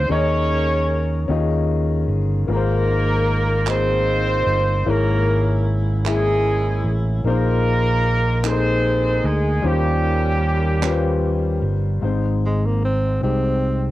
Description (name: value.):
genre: slow gospel.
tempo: 50 BPM (dotted quarters).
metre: 6/8.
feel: straight.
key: Ab major.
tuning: A4 = 439 Hz.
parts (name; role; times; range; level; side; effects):
mellow horn section; melody; 0.0-11.6 s; G3 to Db5; -21 LUFS; right 1 dB; cassette tape.
dark grand piano; accompaniment; 0.0-13.9 s; Ab2 to Fb5; -24 LUFS; left 6 dB; cassette tape.
fingered electric bass; bass; 0.0-13.9 s; G1 to Eb2; -20 LUFS; right 1 dB; none.
group handclap; percussion; 3.7-11.2 s; none; -28 LUFS; right 8 dB; none.
breathy alto saxophone; melody; 12.5-13.9 s; Ab3 to C4; -23 LUFS; right 1 dB; cassette tape.
room: moderate studio ambience, RT60 0.5 s.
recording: home recording on cassette.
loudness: -17 LUFS.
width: side -15 dB against mid.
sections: 0.0-12.0 A section; 12.0-13.9 B section.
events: none.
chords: 0.1 Eb7sus4; 1.3 Eb9sus4; 2.5 Ab69; 4.9 Dbm6/Ab; 7.2 Bb9sus4; 9.6 Eb13; 12.0 Ab.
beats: | 0.10 1.29 | 2.48 3.67 | 4.86 6.06 | 7.25 8.44 | 9.64 10.83 | 12.03 13.22.